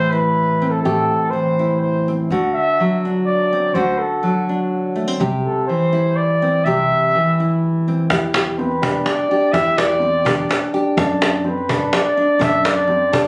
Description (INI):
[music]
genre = acoustic folk duo or small band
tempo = 124 BPM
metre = 3/4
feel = straight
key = unclear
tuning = A4 = 439 Hz
[part]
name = warm flugelhorn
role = melody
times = 0.0-13.3 s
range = A4 to E5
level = -20 LUFS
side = equal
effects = none
[part]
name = nylon-string guitar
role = accompaniment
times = 0.0-13.3 s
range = F#2 to A4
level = -22 LUFS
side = equal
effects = none
[part]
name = upright bass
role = bass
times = 0.9-13.3 s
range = A1 to F#2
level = -29 LUFS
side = equal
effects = none
[part]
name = dark upright piano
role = arpeggios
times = 8.1-13.3 s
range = C4 to E4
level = -25 LUFS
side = equal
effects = none
[part]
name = cajon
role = percussion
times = 8.1-13.2 s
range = none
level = -22 LUFS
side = equal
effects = none
[sound]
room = moderate studio reverb, RT60 0.6 s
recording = recorded on a phone in the room, studio ambience, compression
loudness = -18 LUFS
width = mono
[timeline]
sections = 0.0-8.1 A section; 8.1-13.3 B section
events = break 7.6-8.1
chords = 0.0 Am7; 2.3 D7; 5.2 C; 8.1 Em7; 11.0 Bm7/F#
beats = 0.36 | 0.85 1.33 1.82 | 2.30 2.78 3.27 | 3.75 4.23 4.72 | 5.20 5.68 6.17 | 6.65 7.13 7.61 | 8.09 8.57 9.05 | 9.53 10.01 10.49 | 10.97 11.45 11.93 | 12.40 12.88